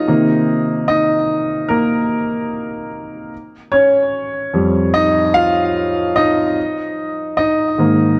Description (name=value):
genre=pop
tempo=74 BPM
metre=4/4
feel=straight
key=unclear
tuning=A4 = 440 Hz
part: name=clear concert grand piano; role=solo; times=0.0-8.2 s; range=F2 to F5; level=-16 LUFS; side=equal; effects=none
room=moderate lush hall reverb, RT60 2.4 s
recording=dark, warm production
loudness=-16 LUFS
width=mono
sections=0.0-8.2 A section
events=grand piano solo 0.0-8.2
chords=0.1 Cm7; 3.3 Fsus2; 6.6 Absus2